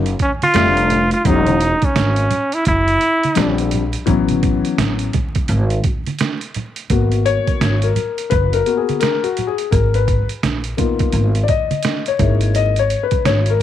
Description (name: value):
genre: hip hop, jazz-hop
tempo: 85 BPM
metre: 4/4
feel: swing 62% on 16ths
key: G# minor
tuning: A4 = 439 Hz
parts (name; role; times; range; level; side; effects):
- dark grand piano; accompaniment; 0.0-13.6 s; E3 to E5; -19 LUFS; left 8 dB; none
- upright bass; bass; 0.0-13.5 s; E1 to A#1; -18 LUFS; equal; none
- trip hop sampler-style drum kit; drums; 0.1-13.6 s; hi-hat, kick drum, snare drum; -20 LUFS; right 2 dB; none
- tube shaker and congas; percussion; 0.1-13.6 s; none; -27 LUFS; right 4 dB; none
- brilliant trombone; melody; 0.2-3.7 s; C#4 to E#4; -16 LUFS; right 1 dB; none
room: light reverb, studio ambience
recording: 1960s-style stereo, vinyl crackle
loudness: -14 LUFS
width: side -11 dB against mid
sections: 0.0-6.9 A section; 6.9-13.6 B section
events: grand piano solo 6.9-13.6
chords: 0.0 F#maj7(no3); 0.6 Fmaj13; 1.3 Emaj13; 3.4 A#69; 4.1 A69; 6.9 G#m9; 9.7 G#m69; 12.2 C#m13/G#